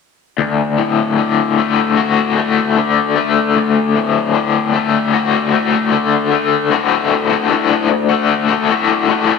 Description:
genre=rock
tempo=76 BPM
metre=4/4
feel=straight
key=D major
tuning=A4 = 440 Hz
part: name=raw garage guitar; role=solo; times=0.4-9.4 s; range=D2 to F#4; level=-12 LUFS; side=left 6 dB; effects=overdrive, tremolo
room=wet echo chamber reverb, RT60 1.3 s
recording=none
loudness=-12 LUFS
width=side -5 dB against mid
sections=0.4-6.7 A section; 6.7-9.4 B section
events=none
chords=0.4 D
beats=| 0.38 1.17 1.97 2.76 | 3.55 4.34 5.14 5.93 | 6.72 7.51 8.30 9.09

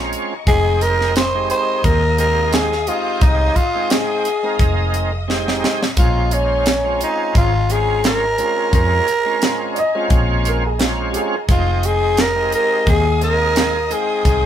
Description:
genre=straight-eighth soul blues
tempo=87 BPM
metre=4/4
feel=swing 54% on 16ths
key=F minor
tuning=A4 = 444 Hz
part: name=growling tenor saxophone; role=melody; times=0.0-14.5 s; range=Db4 to C5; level=-18 LUFS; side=equal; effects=none
part: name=bright tonewheel organ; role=accompaniment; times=0.0-14.5 s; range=Ab3 to G5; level=-24 LUFS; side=right 2 dB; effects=slow rotary speaker, overdrive, chorus vibrato
part: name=dark symphonic string section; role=sustained chords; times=0.0-14.5 s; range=Eb5 to Eb6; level=-28 LUFS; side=left 3 dB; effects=none
part: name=vintage muted fingered electric bass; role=bass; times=0.0-14.5 s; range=F1 to F2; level=-20 LUFS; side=equal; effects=none
part: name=tight funk drum kit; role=drums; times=0.1-14.4 s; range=hi-hat, kick drum, snare drum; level=-18 LUFS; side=equal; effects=none
part: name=dark upright piano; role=second line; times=9.7-11.5 s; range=G4 to Eb5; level=-23 LUFS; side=equal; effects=none
room=moderate studio reverb, RT60 0.5 s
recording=band playing live in one room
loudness=-14 LUFS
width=side -10 dB against mid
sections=0.0-14.5 A section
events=drum fill 5.3-6.0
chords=0.5 Fm7; 6.0 Bbm7; 11.5 Fm7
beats=| 0.47 1.16 1.84 2.53 | 3.22 3.91 4.60 5.28 | 5.97 6.66 7.35 8.04 | 8.73 9.42 10.11 10.80 | 11.49 12.18 12.87 13.56 | 14.25

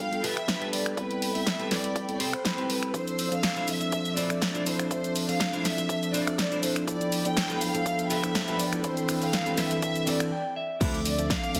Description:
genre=nu-disco, nu disco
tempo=122 BPM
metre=4/4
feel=swing 53% on 16ths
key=D dorian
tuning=A4 = 440 Hz
part: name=warm studio violin section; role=melody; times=0.0-11.6 s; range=B4 to G5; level=-35 LUFS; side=equal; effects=tape echo
part: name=mellow tine electric piano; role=accompaniment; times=0.0-11.6 s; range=E3 to B5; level=-33 LUFS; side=equal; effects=sidechain pumping, slapback echo
part: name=muted studio string section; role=sustained chords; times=0.0-11.6 s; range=F3 to E6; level=-40 LUFS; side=equal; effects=sidechain pumping
part: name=clean electric guitar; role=riff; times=0.0-11.5 s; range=C4 to A5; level=-38 LUFS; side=equal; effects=subtle chorus, low-pass filter
part: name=house drum kit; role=drums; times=0.1-11.6 s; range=crash cymbal, finger snaps, hi-hat, shaker, snare drum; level=-33 LUFS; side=equal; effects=studio reverb
part: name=electronic kick drum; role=drums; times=0.5-11.4 s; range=none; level=-35 LUFS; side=equal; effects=high-pass filter on kick, studio reverb
part: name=chorused synth bass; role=bass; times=10.8-11.6 s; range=D2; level=-33 LUFS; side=equal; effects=tube saturation, sidechain pumping
room=moderate plate reverb, RT60 1.4 s, digital ambience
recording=dense, heavily limited modern master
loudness=-28 LUFS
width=mono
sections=0.0-10.8 A section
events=build-up 0.0-10.8; clean electric guitar fill 9.8-10.8; stop 10.3-10.8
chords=0.0 G9; 1.0 Am9; 2.9 Dm9; 6.9 G9; 8.8 Am9; 10.8 Dm9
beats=0.48 | 0.97 1.47 1.96 2.45 | 2.94 3.43 3.93 4.42 | 4.91 5.40 5.89 6.38 | 6.88 7.37 7.86 8.35 | 8.84 9.34 9.83 10.32 | 10.81 11.30

